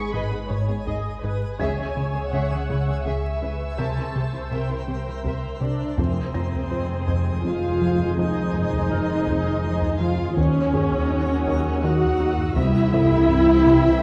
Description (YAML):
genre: cinematic, suspense film score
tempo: 82 BPM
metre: 3/4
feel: straight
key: F phrygian from 6.0 s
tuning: A4 = 441 Hz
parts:
  - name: muted studio violin section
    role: melody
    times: 0.0-14.0 s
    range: E5 to C#6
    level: -41 LUFS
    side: equal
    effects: none
  - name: muted studio viola section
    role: accompaniment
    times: 0.0-14.0 s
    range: C4 to D#5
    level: -28 LUFS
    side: equal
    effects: none
  - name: twinkling granular texture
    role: sustained chords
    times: 0.0-14.0 s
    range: Eb4 to G#5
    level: -38 LUFS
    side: equal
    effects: built-in reverb
  - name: muted studio cello section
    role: bass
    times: 0.0-14.0 s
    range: C2 to C#3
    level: -34 LUFS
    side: equal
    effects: none
  - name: deep rumbling drone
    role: drone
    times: 0.0-14.0 s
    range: G#1 to F2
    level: -34 LUFS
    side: equal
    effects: built-in reverb
  - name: felt-muted upright piano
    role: texture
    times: 0.0-14.0 s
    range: Ab4 to Bb6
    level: -39 LUFS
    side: equal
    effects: none
  - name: muted chamber violin section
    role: texture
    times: 0.0-14.0 s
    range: G#5 to A#6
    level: -45 LUFS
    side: equal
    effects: none
  - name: muted chamber violin section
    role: second line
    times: 0.1-14.0 s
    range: B3 to Gb5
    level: -36 LUFS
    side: equal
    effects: none
  - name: plucky analog bass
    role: riff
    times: 0.1-13.9 s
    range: F2 to Eb4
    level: -29 LUFS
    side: equal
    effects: none
  - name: muted chamber double bass section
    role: bass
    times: 0.1-14.0 s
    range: F1 to Eb2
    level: -32 LUFS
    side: equal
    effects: none
  - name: taiko ensemble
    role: drums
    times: 0.9-14.0 s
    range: none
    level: -34 LUFS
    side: equal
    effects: none
  - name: warm French horn section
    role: sustained chords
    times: 5.6-14.0 s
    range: C4 to Gb4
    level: -30 LUFS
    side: equal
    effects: none
  - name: warm trombone section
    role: sustained chords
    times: 6.0-14.0 s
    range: C3 to Ab3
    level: -36 LUFS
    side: equal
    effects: none
  - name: timpani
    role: percussion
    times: 6.0-7.0, 12.6-13.6 s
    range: F2 to C3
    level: -31 LUFS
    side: equal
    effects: none
room: moderate scoring stage reverb, RT60 1.7 s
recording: dark, warm production, vinyl crackle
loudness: -22 LUFS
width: mono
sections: 0.0-6.0 A section; 6.0-14.0 B section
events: none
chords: 0.0 G#m; 1.6 C#m; 3.8 C7; 6.0 Fm7; 10.4 Ebm7; 12.6 C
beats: 0.13 0.86 | 1.59 2.32 3.05 | 3.79 4.52 5.25 | 5.98 6.71 7.44 | 8.18 8.91 9.64 | 10.37 11.10 11.84 | 12.57 13.30